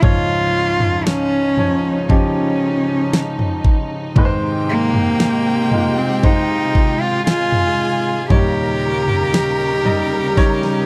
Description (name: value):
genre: pop ballad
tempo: 58 BPM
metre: 4/4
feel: straight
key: Ab major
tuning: A4 = 440 Hz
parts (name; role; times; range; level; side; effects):
- warm cello; melody; 0.0-10.9 s; Bb3 to G4; -21 LUFS; equal; none
- warm baby grand piano; accompaniment; 0.0-10.9 s; Db2 to Eb5; -24 LUFS; equal; none
- warm studio string section; sustained chords; 0.0-10.9 s; C3 to F4; -27 LUFS; equal; none
- pop drum kit; drums; 0.0-10.9 s; kick drum, snare drum, toms; -19 LUFS; equal; none
- rich chamber violin section; second line; 4.2-10.9 s; G4 to Bb5; -28 LUFS; equal; none
room: little or no reverb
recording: dry, close 1970s-style studio recording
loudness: -17 LUFS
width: mono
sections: 0.0-10.9 A section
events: drum fill 10.4-10.9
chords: 0.0 Dbadd9; 4.2 Ab; 8.3 Eb7